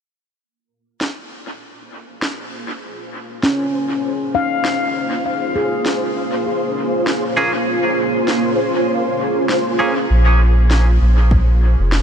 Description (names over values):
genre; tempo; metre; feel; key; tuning
ambient dub; 99 BPM; 4/4; swing 57% on 16ths; Bb minor; A4 = 440 Hz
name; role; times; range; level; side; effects
granular cloud pad; sustained chords; 2.3-12.0 s; Bb3 to C5; -20 LUFS; right 1 dB; built-in reverb, ensemble chorus
electronic snare drum; drums; 1.0-12.0 s; none; -26 LUFS; equal; small room ambience, dub echo
handpan; arpeggios; 3.4-7.0 s; Db4 to F5; -20 LUFS; left 2 dB; low-pass filter, analog delay
twangy electric guitar; stabs; 7.4-9.9 s; Bb3 to Ab4; -22 LUFS; right 1 dB; dub echo
soft dub sub bass; bass; 10.1-12.0 s; F1 to Bb1; -12 LUFS; equal; none
electronic kick drum; drums; 11.3-11.5 s; none; -17 LUFS; equal; overdrive, small room ambience
room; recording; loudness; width
moderate huge ambient reverb, RT60 6.4 s; dreamy mix soaked in reverb; -15 LUFS; side -8 dB against mid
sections
0.4-10.1 A section; 10.1-12.0 B section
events
fade-in on ambient pad 0.4-10.1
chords
0.4 Bbm7